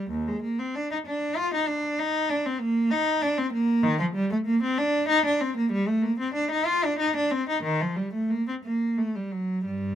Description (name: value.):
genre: classical, baroque-style suite movement for unaccompanied cello.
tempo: 56-66 BPM (dotted quarters).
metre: 6/8.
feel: rubato.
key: G minor from 3.8 s.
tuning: A4 = 440 Hz.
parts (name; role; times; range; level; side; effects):
rich cello; solo; 0.0-9.9 s; Eb2 to F4; -24 LUFS; equal; none.
room: light reverb.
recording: minimal, uncompressed stereo recording.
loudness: -23 LUFS.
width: side -10 dB against mid.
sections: 0.0-9.9 A section.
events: none.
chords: none.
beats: | 0.11 1.06 | 1.98 2.91 | 3.83 4.77 | 5.72 6.67 | 7.63 8.63 | 9.66.